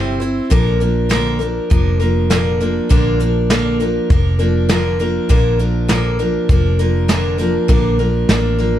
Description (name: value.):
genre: honky-tonk and classic country.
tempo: 100 BPM.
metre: 4/4.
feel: straight.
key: unclear.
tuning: A4 = 440 Hz.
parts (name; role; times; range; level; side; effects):
picked steel-string acoustic guitar; accompaniment; 0.0-8.8 s; Bb2 to C5; -17 LUFS; equal; none.
vintage muted fingered electric bass; bass; 0.0-8.8 s; F1 to Bb1; -18 LUFS; equal; none.
soft brush drum kit; drums; 0.2-8.4 s; hi-hat, kick drum, snare drum; -16 LUFS; equal; none.
room: light reverb.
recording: dark, warm production.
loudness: -13 LUFS.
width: side -11 dB against mid.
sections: 0.0-7.7 A section; 7.7-8.8 B section.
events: none.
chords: 0.0 C; 0.5 Bb.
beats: | 0.51 1.11 1.71 2.30 | 2.90 3.50 4.10 4.70 | 5.30 5.89 6.49 7.09 | 7.69 8.29.